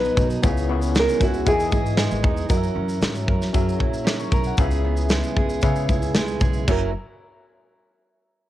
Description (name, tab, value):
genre	acoustic pop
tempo	115 BPM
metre	4/4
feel	straight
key	F# mixolydian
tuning	A4 = 440 Hz
part	nylon-string guitar	melody	0.0-2.2 s	F#4 to B4	-24 LUFS	equal	cassette tape, tape echo
part	fingerpicked steel-string acoustic guitar	accompaniment	0.0-6.9 s	B2 to A#4	-28 LUFS	right 7 dB	cassette tape
part	overdriven reed electric piano	accompaniment	0.0-6.9 s	B3 to C#6	-30 LUFS	left 9 dB	tremolo, cassette tape
part	mellow tonewheel organ	sustained chords	0.0-6.9 s	C#3 to D#5	-32 LUFS	equal	slow rotary speaker, cassette tape
part	upright bass	bass	0.0-6.9 s	F#1 to C#3	-25 LUFS	equal	none
part	modern studio drum kit	drums	0.0-6.8 s	crash cymbal, kick drum, shaker, snare drum	-22 LUFS	equal	cassette tape
room	little or no reverb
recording	home recording on cassette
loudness	-19 LUFS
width	side -14 dB against mid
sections	0.0-2.5 A section; 2.5-6.7 B section; 6.7-8.5 C section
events	none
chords	0.4 C#m7; 1.5 Emaj7; 2.5 F#7; 4.6 C#m7; 6.7 F#7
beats	| 0.43 0.95 1.47 1.99 | 2.51 3.03 3.55 4.07 | 4.59 5.12 5.64 6.16 | 6.68